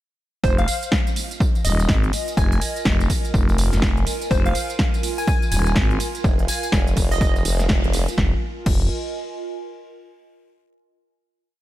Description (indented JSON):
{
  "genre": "bass house",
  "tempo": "124 BPM",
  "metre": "4/4",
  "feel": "swing 61% on 16ths",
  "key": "F minor",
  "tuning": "A4 = 440 Hz",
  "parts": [
    { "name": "glassy wavetable pluck", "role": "melody", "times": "0.4-7.3 s", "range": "C5 to Ab5", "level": "-28 LUFS", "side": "equal", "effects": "chorus, ping-pong delay" },
    { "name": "growling FM bass", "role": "bass", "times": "0.4-8.9 s", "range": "Eb1 to Ab1", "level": "-20 LUFS", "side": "equal", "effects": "tube saturation, sidechain pumping" },
    { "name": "big-room dance drum kit", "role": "drums", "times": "0.4-8.8 s", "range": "crash cymbal, hi-hat, ride cymbal, snare drum, tambourine", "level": "-26 LUFS", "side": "right 1 dB", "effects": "overdrive" },
    { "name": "electronic kick drum", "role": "drums", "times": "0.4-8.8 s", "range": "none", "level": "-20 LUFS", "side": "equal", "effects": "overdrive" },
    { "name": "warbly tape-like pad", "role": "texture", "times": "1.3-10.1 s", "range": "F4 to Ab5", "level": "-31 LUFS", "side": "right 2 dB", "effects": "chorus, built-in reverb, phaser, sidechain pumping" },
    { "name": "formant-sweep wobble bass", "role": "bass", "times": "6.2-8.1 s", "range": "F1", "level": "-22 LUFS", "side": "equal", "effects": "chorus, tube saturation, sidechain pumping" }
  ],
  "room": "little or no reverb",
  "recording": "none",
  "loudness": "-18 LUFS",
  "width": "side -15 dB against mid",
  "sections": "0.4-8.2 drop; 8.2-10.1 final chord",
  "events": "drop 0.4-8.2; band accent 7.7",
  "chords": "0.4 Fm",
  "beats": "| 0.44 0.92 1.40 1.89 | 2.37 2.85 3.34 3.82 | 4.31 4.79 5.27 5.76 | 6.24 6.73 7.21 7.69 | 8.18 8.66 9.14 9.63"
}